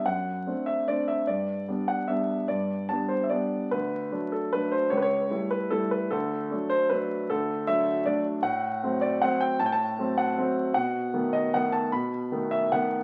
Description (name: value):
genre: classical, piano waltz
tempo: 140-166 BPM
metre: 3/4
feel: rubato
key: unclear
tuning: A4 = 440 Hz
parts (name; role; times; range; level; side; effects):
- clear concert grand piano; solo; 0.0-13.0 s; C#2 to B5; -27 LUFS; equal; none
room: moderate stone room reverb, RT60 1.2 s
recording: very old 78 rpm record, vinyl crackle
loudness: -27 LUFS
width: mono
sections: 0.0-13.0 A section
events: none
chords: 0.1 D7/F#; 1.3 G; 3.7 D; 4.9 A7/C#; 6.1 D; 8.4 F#dim/A; 10.8 B7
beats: | 0.07 0.46 0.88 | 1.28 1.67 2.08 | 2.49 2.89 3.31 | 3.72 4.12 4.52 | 4.92 5.30 5.71 | 6.11 6.50 6.90 | 7.29 7.67 8.05 | 8.43 8.81 9.21 | 9.60 9.98 10.38 | 10.75 11.14 11.54 | 11.92 12.31 12.72